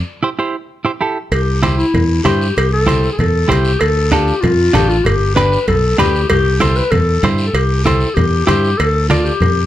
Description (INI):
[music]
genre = latin, cumbia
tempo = 193 BPM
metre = 4/4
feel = straight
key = C major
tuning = A4 = 441 Hz
[part]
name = semi-hollow electric guitar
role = accompaniment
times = 0.2-9.3 s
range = D4 to D5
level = -17 LUFS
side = right 4 dB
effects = none
[part]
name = growling clarinet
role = second line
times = 1.3-9.7 s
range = E4 to B4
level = -17 LUFS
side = left 3 dB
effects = slapback echo
[part]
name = fingered electric bass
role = bass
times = 1.3-9.7 s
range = G1 to G2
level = -16 LUFS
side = equal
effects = none
[part]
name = congas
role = percussion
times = 1.3-9.6 s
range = none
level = -20 LUFS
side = left 1 dB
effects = none
[part]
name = cowbell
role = percussion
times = 1.3-9.6 s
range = none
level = -22 LUFS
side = right 4 dB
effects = none
[part]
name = guiro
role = percussion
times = 1.3-9.7 s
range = none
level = -28 LUFS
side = left 3 dB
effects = none
[sound]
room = light reverb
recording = close, detailed microphones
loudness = -12 LUFS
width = side -13 dB against mid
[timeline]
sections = 0.0-1.3 A section; 1.3-9.7 B section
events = break 0.1-1.3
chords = 0.1 C; 3.8 Dm; 5.1 G; 6.3 C; 8.8 Dm